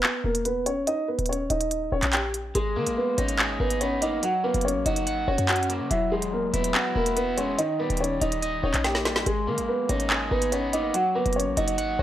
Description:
hip hop, drill; 143 BPM; 4/4; half-time; G# minor; A4 = 441 Hz
dark concert grand piano; melody; 0.0-12.0 s; G#3 to G5; -26 LUFS; equal
short 808-style bass; bass; 0.0-12.0 s; D#1 to D#3; -30 LUFS; equal
drill drum kit; drums; 0.0-11.9 s; handclaps, hi-hat, snare drum; -26 LUFS; equal
electric guitar at the edge of break-up; accompaniment; 2.6-12.0 s; D#3 to F#5; -29 LUFS; left 1 dB
light reverb; dry, gritty hardware recording; -23 LUFS; side -12 dB against mid
0.0-12.0 A section
drum fill 8.8-9.3
0.0 E5; 0.9 D#; 2.6 G#madd9; 4.2 F#; 5.9 Eadd9; 7.6 D#; 9.3 G#madd9; 10.9 F#

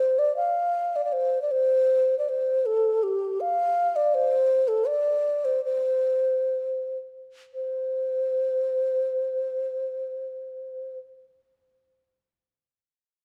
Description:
chinese traditional; 56-83 BPM; 2/4; rubato; C zhi mode; A4 = 439 Hz
mellow low xiao; solo; 0.0-11.0 s; G4 to F5; -25 LUFS; equal
moderate scoring stage reverb, RT60 1.6 s; -25 LUFS; mono
0.0-7.5 A section; 7.5-11.7 B section
slowing down 4.1-7.5

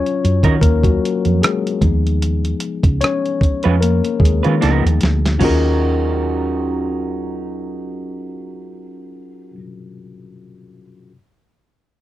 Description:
R&B, neo-soul; 75 BPM; 4/4; swing 55% on 16ths; Eb minor; A4 = 440 Hz
mellow tine electric piano; accompaniment; 0.0-11.1 s; F3 to Db5; -21 LUFS; left 6 dB; overdrive
dusty soul sampler-style drum kit; drums; 0.1-5.6 s; crash cymbal, hi-hat, kick drum, rim click, snare drum; -17 LUFS; right 1 dB
woody fretless electric bass; bass; 0.2-9.5 s; Db2 to Eb3; -17 LUFS; right 1 dB; wide subtle chorus
electric guitar through a small old amp; second line; 0.4-9.6 s; F3 to Cb5; -22 LUFS; right 6 dB; spring reverb
little or no reverb; dry, close 1970s-style studio recording; -14 LUFS; side -14 dB against mid
0.0-5.4 A section; 5.4-8.6 B section
tine electric piano solo 0.0-5.4; drum fill 4.6-5.4
0.0 Ebm7; 1.8 Db7; 4.6 Db13; 5.4 Ebm7

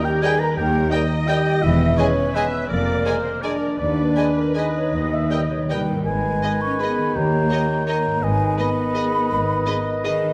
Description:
classical, orchestral ballroom waltz; 150-183 BPM; 3/4; rubato; G# minor; A4 = 439 Hz
mellow hollow concert flute; second line; 0.0-10.3 s; A#4 to C#6; -29 LUFS; equal
warm oboe; second line; 0.0-10.3 s; A#4 to A#5; -32 LUFS; equal
rich symphonic viola section; accompaniment; 0.0-10.1 s; G4 to E5; -33 LUFS; equal
mellow French horn section; sustained chords; 0.0-10.3 s; A#3 to B4; -28 LUFS; equal
concert harp; arpeggios; 0.0-10.3 s; G#2 to B4; -30 LUFS; equal
rich studio violin section; melody; 0.2-10.1 s; D#5 to G#5; -35 LUFS; equal
mellow clarinet; second line; 0.2-10.3 s; A#4 to E5; -34 LUFS; equal
rich symphonic violin section; second line; 0.2-10.1 s; G#4 to D#5; -36 LUFS; equal
mellow bassoon; accompaniment; 0.2-10.3 s; D#3 to G#3; -31 LUFS; equal
rich symphonic cello section; bass; 0.6-10.3 s; D#2 to C#4; -30 LUFS; equal
rich symphonic double bass section; bass; 0.6-9.6 s; E1 to D#2; -29 LUFS; equal
timpani; percussion; 4.9-7.7 s; D#3; -34 LUFS; equal
wet scoring stage reverb, RT60 1.7 s; -21 LUFS; mono
0.0-6.1 A section; 6.1-10.3 B section
timpani fill 4.9-6.1
0.0 D#; 1.6 Emaj7; 2.7 A#7/E#; 3.8 G#m/D#; 4.9 D#; 6.1 G#m; 7.2 D#7; 8.2 G#m

